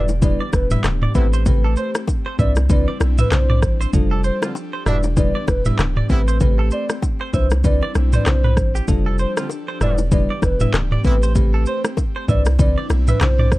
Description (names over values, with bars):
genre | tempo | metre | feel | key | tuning
afrobeats | 97 BPM | 4/4 | swing 58% on 16ths | A minor | A4 = 440 Hz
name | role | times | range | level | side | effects
hollow clarinet-like synth lead | melody | 0.0-13.6 s | B4 to D5 | -26 LUFS | equal | chorus, tape echo
bell-like FM electric piano | accompaniment | 0.0-13.2 s | E3 to B4 | -26 LUFS | left 2 dB | chorus
airy breathy pad | sustained chords | 0.0-13.6 s | E3 to A4 | -31 LUFS | left 2 dB | chorus, sidechain pumping
direct-recorded clean electric guitar | riff | 0.0-13.5 s | G4 to E5 | -30 LUFS | right 5 dB | lush chorus, tape echo
punchy sub bass | bass | 0.0-13.6 s | D1 to C2 | -18 LUFS | equal | none
afro-pop drum kit | drums | 0.1-13.6 s | handclaps, kick drum, rim click, shaker, toms | -19 LUFS | equal | vintage 12-bit sampler grit
bongos and congas | percussion | 0.1-13.4 s | none | -26 LUFS | left 3 dB | none
warm horn section | second line | 1.1-11.2 s | B2 to F4 | -29 LUFS | right 2 dB | none
room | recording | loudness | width
little or no reverb | dark, warm production | -15 LUFS | side -18 dB against mid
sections
0.0-13.6 A section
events
none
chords
0.0 Em7; 1.1 Am9; 2.4 Cmaj9; 3.9 F69; 4.9 Em7; 6.1 Am9; 7.3 Cmaj9; 8.9 F69; 9.8 Em7; 11.0 Am9; 12.3 Cmaj9